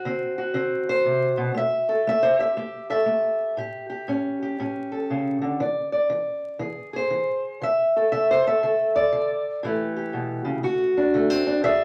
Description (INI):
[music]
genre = acoustic country blues, solo or duo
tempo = 119 BPM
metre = 4/4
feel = swing 64% on 8ths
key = unclear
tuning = A4 = 440 Hz
[part]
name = fingerpicked steel-string acoustic guitar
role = solo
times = 0.0-11.8 s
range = A2 to E5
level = -24 LUFS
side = equal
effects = none
[sound]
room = wet club reverb, RT60 0.8 s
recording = vinyl crackle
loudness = -24 LUFS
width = mono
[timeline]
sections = 0.0-11.8 A section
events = none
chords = 0.0 D7; 1.6 A7; 5.6 E7; 7.6 D5; 9.6 A7; 10.6 D7